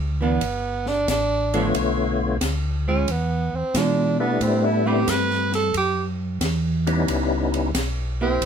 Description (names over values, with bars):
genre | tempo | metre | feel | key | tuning
soul jazz organ trio | 90 BPM | 4/4 | swing 68% on 8ths | unclear | A4 = 436 Hz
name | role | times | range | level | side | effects
mellow tonewheel organ | bass | 0.0-8.5 s | F#1 to B2 | -24 LUFS | equal | chorus vibrato, slow rotary speaker
breathy tenor saxophone | melody | 0.2-8.5 s | B3 to B4 | -23 LUFS | right 3 dB | none
archtop guitar, miked and amplified | accompaniment | 0.2-8.4 s | E3 to B4 | -24 LUFS | right 2 dB | none
open jazz drum kit | drums | 0.4-8.5 s | hi-hat, kick drum, ride cymbal, snare drum | -30 LUFS | equal | none
percussive tonewheel organ | melody | 1.5-7.7 s | D3 to C#5 | -22 LUFS | left 4 dB | slow rotary speaker, overdrive, chorus vibrato
room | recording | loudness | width
light reverb | minimal, uncompressed stereo recording | -20 LUFS | side -7 dB against mid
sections
0.0-8.5 A section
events
tenor saxophone solo 0.0-8.5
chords
0.0 Cmaj7sus2 (rootless); 1.7 Bm7b5; 3.1 E7b9; 4.4 Am9; 7.1 C#m7b5